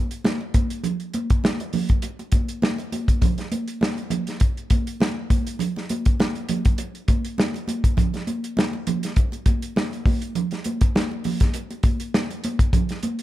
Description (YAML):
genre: soul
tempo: 101 BPM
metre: 4/4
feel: swing 54% on 16ths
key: none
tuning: none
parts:
  - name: warm soul drum kit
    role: drums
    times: 0.1-13.2 s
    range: hi-hat, kick drum, snare drum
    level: -21 LUFS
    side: equal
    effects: none
  - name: congas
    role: percussion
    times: 0.2-13.2 s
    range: none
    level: -27 LUFS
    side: right 2 dB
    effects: none
room: little or no reverb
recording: none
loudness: -21 LUFS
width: side -15 dB against mid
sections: 0.0-13.2 A section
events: none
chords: none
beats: 0.25 | 0.85 1.44 2.03 2.63 | 3.22 3.82 4.41 5.00 | 5.60 6.19 6.79 7.38 | 7.97 8.57 9.16 9.76 | 10.35 10.94 11.54 12.13 | 12.72